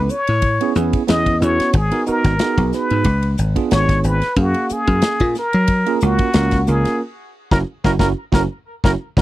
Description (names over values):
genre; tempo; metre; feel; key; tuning
electric jazz fusion; 91 BPM; 4/4; swing 55% on 16ths; unclear; A4 = 440 Hz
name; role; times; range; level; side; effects
trumpet with plunger mute; melody; 0.0-9.2 s; Gb4 to Eb5; -21 LUFS; left 1 dB; none
barky tine electric piano; accompaniment; 0.0-9.2 s; Bb3 to F5; -21 LUFS; moving between right 2 dB and right 10 dB; auto-pan
dry thumbed slap bass; bass; 0.0-9.2 s; Gb1 to Gb3; -18 LUFS; left 1 dB; none
modern studio drum kit; drums; 0.1-9.2 s; hi-hat, kick drum, ride cymbal, snare drum; -19 LUFS; left 1 dB; none
room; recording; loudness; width
little or no reverb; dry, close 1970s-style studio recording; -15 LUFS; side -15 dB against mid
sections
0.0-9.2 A section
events
band accent 7.0-9.2; tine electric piano fill 7.7-9.2; drum fill 8.3-9.2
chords
0.0 Amaj9; 1.7 Abm7; 3.1 Db7b9; 4.4 Gbmaj9; 7.0 Gb7(no3)